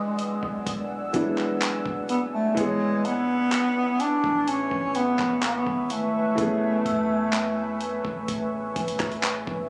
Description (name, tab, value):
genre	contemporary R&B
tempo	63 BPM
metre	4/4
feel	straight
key	unclear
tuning	A4 = 440 Hz
part	warm bass clarinet	melody	0.0-8.8 s	G#3 to D4	-27 LUFS	equal	tape echo
part	felt-muted upright piano	accompaniment	0.0-9.7 s	E3 to C#5	-32 LUFS	equal	none
part	deep dark ambient pad	sustained chords	0.0-9.7 s	B4 to E6	-36 LUFS	equal	chorus, built-in reverb
part	soft 808-style bass	bass	0.0-9.7 s	E1 to E2	-42 LUFS	equal	none
part	downlifter	sound effects	0.0-2.6 s	none	-51 LUFS	equal	none
part	synth chime	texture	0.0-9.7 s	D6 to E6	-42 LUFS	equal	none
part	dusty soul sampler-style drum kit	drums	0.2-9.7 s	handclaps, hi-hat, kick drum, rim click	-32 LUFS	equal	none
room	light reverb, digital ambience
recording	recorded on a phone in the room, club reverb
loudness	-25 LUFS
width	mono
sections	0.0-9.7 A section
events	none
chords	0.0 E9; 2.6 Amaj9